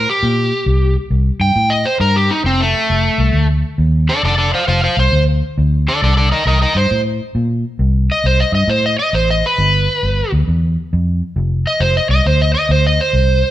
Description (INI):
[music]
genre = electric blues shuffle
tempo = 135 BPM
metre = 4/4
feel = swing 64% on 8ths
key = unclear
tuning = A4 = 441 Hz
[part]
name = overdriven slide guitar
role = melody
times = 0.0-13.5 s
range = A3 to G5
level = -15 LUFS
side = equal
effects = none
[part]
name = vintage muted fingered electric bass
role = bass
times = 0.0-13.4 s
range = F1 to Bb2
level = -15 LUFS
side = equal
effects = none
[sound]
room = moderate stone room reverb, RT60 1.4 s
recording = band playing live in one room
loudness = -12 LUFS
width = side -13 dB against mid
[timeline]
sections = 0.0-13.5 A section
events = electric slide guitar solo 0.0-13.5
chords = 0.0 C5; 2.5 F6; 6.0 C5; 9.6 G6; 11.4 F5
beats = 0.22 | 0.67 1.11 1.56 2.01 | 2.45 2.90 3.34 3.79 | 4.23 4.68 5.12 5.57 | 6.01 6.46 6.91 7.35 | 7.79 8.24 8.69 9.13 | 9.57 10.02 10.46 10.91 | 11.35 11.80 12.24 12.69 | 13.13